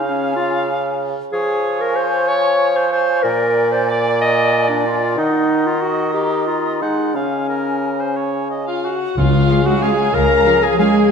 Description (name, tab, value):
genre	classical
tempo	167-203 BPM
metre	3/4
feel	rubato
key	Db major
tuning	A4 = 440 Hz
part	mellow hollow concert flute	second line	0.0-11.1 s	Gb5 to C6	-26 LUFS	left 4 dB	none
part	warm cor anglais	second line	0.0-11.1 s	F4 to Gb5	-24 LUFS	right 2 dB	none
part	clear bassoon	accompaniment	0.0-11.1 s	Bb2 to Ab3	-21 LUFS	right 2 dB	none
part	clear clarinet	second line	0.1-11.1 s	Db4 to F5	-20 LUFS	left 1 dB	none
part	muted chamber violin section	second line	8.7-11.1 s	F5 to Bb5	-24 LUFS	left 5 dB	none
part	mellow French horn section	sustained chords	8.7-11.1 s	F4 to Bb4	-17 LUFS	left 4 dB	none
part	muted chamber cello section	bass	9.2-11.1 s	F3 to Ab3	-19 LUFS	right 4 dB	none
part	muted chamber double bass section	bass	9.2-10.4 s	Db2	-20 LUFS	right 2 dB	none
part	timpani	percussion	9.2-9.6 s	Db3	-20 LUFS	left 6 dB	none
part	muted studio violin section	melody	9.5-10.9 s	F5	-31 LUFS	left 4 dB	none
part	muted chamber viola section	accompaniment	9.5-10.9 s	Db4 to F4	-29 LUFS	right 4 dB	none
room	wet scoring stage reverb, RT60 1.8 s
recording	none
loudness	-15 LUFS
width	side -6 dB against mid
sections	0.0-9.2 A section; 9.2-11.1 A section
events	none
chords	0.0 Db; 1.3 Db/F; 3.2 Bb7; 5.2 Ebm; 6.8 Ab7; 7.1 Db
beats	0.07 | 0.38 0.69 1.02 | 1.33 1.65 1.98 | 2.28 2.60 2.93 | 3.24 3.56 3.89 | 4.21 4.52 4.86 | 5.17 5.49 5.83 | 6.15 6.47 6.82 | 7.14 7.48 7.84 | 8.17 8.50 8.85 | 9.18 9.50 9.83 | 10.15 10.47 10.80 | 11.11